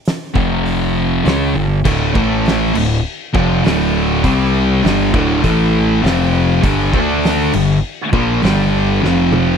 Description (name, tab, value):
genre	stoner and doom metal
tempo	100 BPM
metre	4/4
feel	straight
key	D minor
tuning	A4 = 441 Hz
part	oversized low-tuned drum kit	drums	0.1-9.5 s	crash cymbal, hi-hat, kick drum, snare drum, toms	-20 LUFS	equal	none
part	thick fuzz guitar	riff	0.3-9.6 s	D2 to D4	-15 LUFS	equal	distortion
part	growling picked electric bass	bass	0.4-9.6 s	D1 to D2	-20 LUFS	equal	overdrive
part	sludgy distorted guitar	riff	1.9-9.6 s	D2 to D4	-18 LUFS	equal	overdrive
room	little or no reverb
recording	dry, close 1970s-style studio recording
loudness	-12 LUFS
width	side -7 dB against mid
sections	0.0-9.6 A section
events	drum fill 9.0-9.6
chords	0.4 F5; 1.3 G5; 1.9 D5; 2.2 A5; 2.8 Dm; 4.2 C5; 4.8 D5; 5.4 A5; 6.0 F5; 6.6 G5; 6.9 D5; 7.5 G5; 9.0 F5